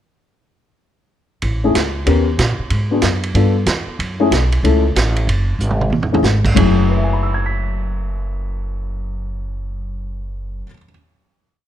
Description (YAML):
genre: jazz, big band swing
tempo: 187 BPM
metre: 4/4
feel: swing 64% on 8ths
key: F# minor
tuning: A4 = 440 Hz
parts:
  - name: upright bass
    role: bass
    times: 1.4-10.6 s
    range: F#1 to A#2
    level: -18 LUFS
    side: equal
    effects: none
  - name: vintage drum kit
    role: drums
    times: 1.4-6.7 s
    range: crash cymbal, hi-hat, kick drum, ride cymbal, snare drum, toms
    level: -21 LUFS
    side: right 4 dB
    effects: none
  - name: dark baby grand piano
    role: accompaniment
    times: 1.6-10.9 s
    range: F#2 to B6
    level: -18 LUFS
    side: left 4 dB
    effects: none
room: light reverb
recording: none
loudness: -15 LUFS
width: side -11 dB against mid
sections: 1.4-6.6 A section; 6.6-9.1 final chord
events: drum fill 5.6-6.2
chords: 1.4 Amaj7; 2.1 D#7b13; 2.7 G#m7b5; 3.3 G9; 4.0 F#m7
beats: | 1.43 1.75 2.07 2.39 | 2.71 3.03 3.35 3.67 | 3.99 4.31 4.63 4.95 | 5.27 5.59 5.92 6.24 | 6.56 6.88 7.21 7.53 | 7.85 8.18 8.50 8.82